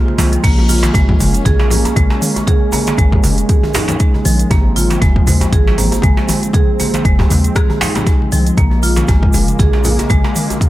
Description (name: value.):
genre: afro house.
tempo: 118 BPM.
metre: 4/4.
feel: swing 56% on 16ths.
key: Bb minor.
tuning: A4 = 441 Hz.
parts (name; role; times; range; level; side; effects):
warm analog pad; sustained chords; 0.0-10.7 s; Db3 to Db4; -24 LUFS; equal; chorus, sidechain pumping.
congas; percussion; 0.1-10.7 s; none; -23 LUFS; left 2 dB; none.
marimba with medium mallets; arpeggios; 0.2-10.5 s; F3 to Ab4; -18 LUFS; right 1 dB; sidechain pumping, tape echo.
warm 808-style bass; bass; 0.2-10.2 s; F1 to Eb2; -16 LUFS; equal; sidechain pumping.
afro-pop drum kit; drums; 0.2-10.7 s; crash cymbal, hi-hat, rim click, toms; -21 LUFS; equal; none.
djembe; percussion; 0.2-10.6 s; none; -23 LUFS; right 1 dB; none.
egg shaker; percussion; 0.2-10.7 s; none; -27 LUFS; right 4 dB; none.
electronic kick drum; drums; 0.4-10.7 s; none; -13 LUFS; equal; none.
room: little or no reverb.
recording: none.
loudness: -11 LUFS.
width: side -15 dB against mid.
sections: 0.0-10.7 A section.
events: none.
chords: 0.4 Bbm7; 4.5 Ab6; 8.6 Bbm7.